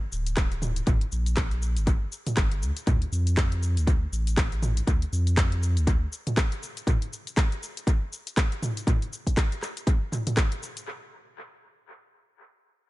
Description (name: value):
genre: afro house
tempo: 120 BPM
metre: 4/4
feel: swing 58% on 16ths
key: unclear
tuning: A4 = 441 Hz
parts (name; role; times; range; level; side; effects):
- warm sub bass; bass; 0.0-6.1 s; D1 to F2; -26 LUFS; equal; sidechain pumping
- house drum kit; drums; 0.1-10.9 s; handclaps, hi-hat, rim click, shaker, toms; -31 LUFS; equal; dub echo
- electronic kick drum; drums; 0.4-10.5 s; none; -24 LUFS; equal; none
room: little or no reverb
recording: echo-heavy mix, nothing above 11.0 kHz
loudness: -24 LUFS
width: side -19 dB against mid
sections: 0.0-10.9 A section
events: drop 0.0-10.9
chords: none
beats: 0.37 | 0.87 1.37 1.87 2.37 | 2.87 3.37 3.87 4.37 | 4.87 5.37 5.87 6.37 | 6.87 7.37 7.87 8.37 | 8.87 9.37 9.87 10.37